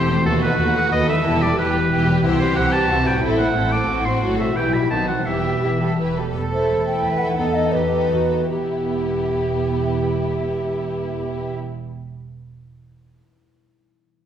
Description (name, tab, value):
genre	classical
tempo	149-186 BPM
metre	3/4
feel	rubato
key	E minor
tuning	A4 = 439 Hz
part	warm symphonic violin section	melody	0.0-11.5 s	G4 to C5	-32 LUFS	left 2 dB	none
part	bright oboe	second line	0.0-6.0 s	A4 to D6	-22 LUFS	right 1 dB	none
part	warm symphonic violin section	second line	0.0-11.5 s	D#4 to B4	-28 LUFS	left 2 dB	none
part	rich symphonic viola section	accompaniment	0.0-11.5 s	D#3 to A4	-27 LUFS	right 2 dB	none
part	concert harp	arpeggios	0.0-12.4 s	A2 to E5	-27 LUFS	left 4 dB	none
part	rich symphonic double bass section	bass	0.0-11.5 s	E1 to E2	-26 LUFS	right 3 dB	none
part	warm studio cello section	bass	0.0-11.5 s	D#2 to B4	-26 LUFS	right 2 dB	none
part	dark French horn section	sustained chords	0.3-6.2 s	G3 to G4	-28 LUFS	left 4 dB	none
part	mellow hollow silver concert flute	second line	6.5-11.5 s	G4 to G5	-23 LUFS	equal	none
room	wet recital hall reverb, RT60 1.3 s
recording	recorded in a church or concert hall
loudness	-18 LUFS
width	side -9 dB against mid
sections	0.0-6.3 A section; 6.3-8.5 B section; 8.5-10.8 C section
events	slowing down 5.8-8.5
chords	0.3 B7/D#; 1.3 Em; 2.2 Cmaj7; 3.2 Am; 4.2 F#dim/A; 4.6 Em/B; 4.9 B7b9; 5.3 Em; 6.3 Am/E; 7.4 B7/E; 8.5 Em